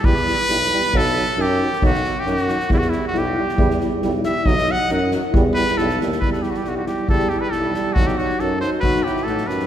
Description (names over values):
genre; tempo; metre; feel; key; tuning
balkan folk, Balkan brass band; 137 BPM; 2/4; straight; E harmonic minor; A4 = 440 Hz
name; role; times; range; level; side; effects
bright trumpet; melody; 0.0-9.7 s; E4 to F#5; -22 LUFS; equal; none
mellow euphonium; accompaniment; 0.0-9.7 s; D#4 to E4; -26 LUFS; left 3 dB; none
warm tuba; bass; 0.0-9.7 s; B1 to A2; -24 LUFS; equal; none
soft-mallet drum kit; percussion; 0.0-9.6 s; kick drum, snare drum; -23 LUFS; equal; none
warm euphonium; accompaniment; 0.1-9.7 s; F#3 to G3; -26 LUFS; right 3 dB; none
mellow flugelhorn; second line; 8.8-9.7 s; E4 to G4; -26 LUFS; left 3 dB; none
room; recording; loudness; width
wet concert hall reverb, RT60 2.5 s; recorded in a church or concert hall; -17 LUFS; side -10 dB against mid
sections
0.0-6.2 A section; 6.2-9.7 B section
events
speeding up 0.0-9.7; trumpet solo 0.0-6.2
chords
0.0 Em; 0.9 B; 2.7 Em; 4.5 B; 5.3 Em; 8.0 B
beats
| 0.04 0.49 | 0.93 1.38 | 1.82 2.26 | 2.70 3.15 | 3.58 4.02 | 4.46 4.90 | 5.34 5.78 | 6.21 6.65 | 7.09 7.53 | 7.96 8.40 | 8.83 9.27